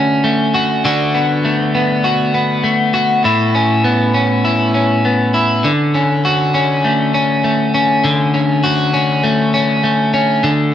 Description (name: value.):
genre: dream pop.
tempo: 100 BPM.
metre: 4/4.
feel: straight.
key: D major.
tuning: A4 = 442 Hz.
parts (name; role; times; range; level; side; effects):
electric guitar at the edge of break-up; solo; 0.0-10.7 s; A2 to F#4; -12 LUFS; left 1 dB; lush chorus, ping-pong delay.
room: wet booth ambience, RT60 0.2 s.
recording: none.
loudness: -12 LUFS.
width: side -10 dB against mid.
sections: 0.0-5.6 A section; 5.6-10.7 B section.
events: none.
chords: 0.0 Dmaj7; 0.8 Bm7/D; 3.2 Aadd9; 5.6 Dmaj7.